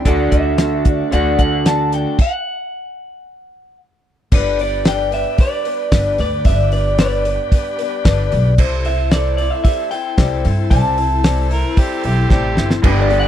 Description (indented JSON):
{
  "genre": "folk rock and heartland rock",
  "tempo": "113 BPM",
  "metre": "4/4",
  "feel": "straight",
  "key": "G major",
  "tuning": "A4 = 439 Hz",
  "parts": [
    { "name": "picked twelve-string acoustic guitar", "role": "accompaniment", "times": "0.0-13.3 s", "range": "G2 to B4", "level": "-22 LUFS", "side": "left 9 dB", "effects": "none" },
    { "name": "bright tonewheel organ", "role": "sustained chords", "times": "0.0-13.3 s", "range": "D4 to C5", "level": "-31 LUFS", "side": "equal", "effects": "slow rotary speaker, overdrive" },
    { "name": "electric guitar through a small old amp", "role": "riff", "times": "0.0-2.2, 12.8-13.3 s", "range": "G2 to G4", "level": "-19 LUFS", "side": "right 2 dB", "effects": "none" },
    { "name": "electric guitar through a small old amp", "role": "melody", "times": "0.1-13.3 s", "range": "B4 to A5", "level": "-21 LUFS", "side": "right 2 dB", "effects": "spring reverb" },
    { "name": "upright bass", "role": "bass", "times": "0.1-13.3 s", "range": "G1 to G2", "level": "-18 LUFS", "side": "equal", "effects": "none" },
    { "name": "damped 70s drum kit", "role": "drums", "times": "0.1-13.2 s", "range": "crash cymbal, hi-hat, kick drum, snare drum", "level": "-15 LUFS", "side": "equal", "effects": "none" },
    { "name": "mellow harmonica", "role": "second line", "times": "11.5-12.7 s", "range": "G4 to Bb4", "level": "-24 LUFS", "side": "right 6 dB", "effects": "tape echo" }
  ],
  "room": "little or no reverb",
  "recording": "dry, close 1970s-style studio recording",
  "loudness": "-14 LUFS",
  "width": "side -10 dB against mid",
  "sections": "0.0-4.3 A section; 4.3-13.3 B section",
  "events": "stop 2.2-4.3; drum fill 12.3-12.8",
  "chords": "0.1 D; 4.3 G; 8.6 C6",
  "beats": "| 0.06 0.59 1.13 1.66 | 2.20 2.73 3.26 3.80 | 4.33 4.86 5.39 5.93 | 6.46 6.99 7.52 8.05 | 8.59 9.12 9.65 10.18 | 10.71 11.25 11.78 12.31 | 12.84"
}